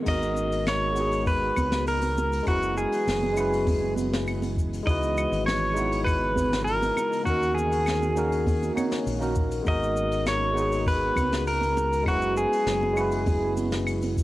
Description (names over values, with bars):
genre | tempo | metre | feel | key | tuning
sunset chillout | 100 BPM | 4/4 | straight | G# minor | A4 = 441 Hz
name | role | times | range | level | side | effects
tine electric piano | accompaniment | 0.0-14.2 s | G#3 to C#5 | -29 LUFS | equal | overdrive, auto-pan, cassette tape, tape echo
ethereal airy pad | sustained chords | 0.0-14.2 s | C#3 to A#5 | -38 LUFS | right 1 dB | none
pedal steel guitar | melody | 0.1-13.5 s | F#4 to D#5 | -26 LUFS | equal | cassette tape, tape echo
fingered electric bass | bass | 0.1-14.2 s | F#1 to D#2 | -30 LUFS | equal | none
electronic kick drum | drums | 0.1-14.2 s | none | -27 LUFS | equal | overdrive, cassette tape
jazz brush drum kit | drums | 0.1-14.2 s | cabasa, claves, crash cymbal, hi-hat, snare drum | -35 LUFS | left 1 dB | cassette tape
congas | percussion | 1.6-14.1 s | none | -33 LUFS | right 3 dB | none
room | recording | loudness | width
light reverb, studio reverb | home recording on cassette | -23 LUFS | side -16 dB against mid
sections
0.1-14.2 A section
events
none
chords
0.1 G#m9; 2.5 F#9sus4; 4.9 C#m11; 7.3 D#m7; 9.7 G#m9; 12.1 F#9sus4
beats
| 0.07 0.67 1.27 1.87 | 2.47 3.07 3.67 4.27 | 4.87 5.47 6.07 6.67 | 7.27 7.87 8.47 9.07 | 9.67 10.27 10.87 11.47 | 12.07 12.67 13.27 13.87